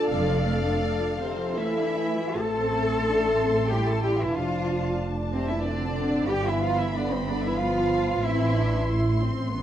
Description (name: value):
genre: cinematic, emotional film score for orchestra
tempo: 73-95 BPM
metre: 3/4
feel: rubato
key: A minor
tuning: A4 = 443 Hz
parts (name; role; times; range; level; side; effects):
- warm studio violin section; melody; 0.0-9.6 s; F5 to C6; -37 LUFS; left 3 dB; none
- warm symphonic violin section; second line; 0.0-8.9 s; C5 to A5; -34 LUFS; left 1 dB; none
- dark symphonic viola section; accompaniment; 0.0-9.6 s; D3 to A4; -30 LUFS; equal; none
- mellow French horn section; sustained chords; 0.0-8.9 s; C3 to A4; -30 LUFS; left 4 dB; none
- warm symphonic cello section; bass; 0.1-8.9 s; F2 to A4; -28 LUFS; right 2 dB; none
- warm symphonic double bass section; bass; 0.1-9.6 s; F1 to A1; -28 LUFS; right 2 dB; none
room: moderate recital hall reverb, RT60 1.6 s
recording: dark, warm production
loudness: -23 LUFS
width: side -10 dB against mid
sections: 0.0-2.3 A section; 2.3-9.6 B section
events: none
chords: 0.0 Dm/F; 2.3 Am; 4.3 F; 6.3 G; 8.2 Am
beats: | 0.09 0.82 1.56 | 2.35 3.04 3.70 | 4.35 4.99 5.65 | 6.30 6.96 7.59 | 8.23 8.88 9.51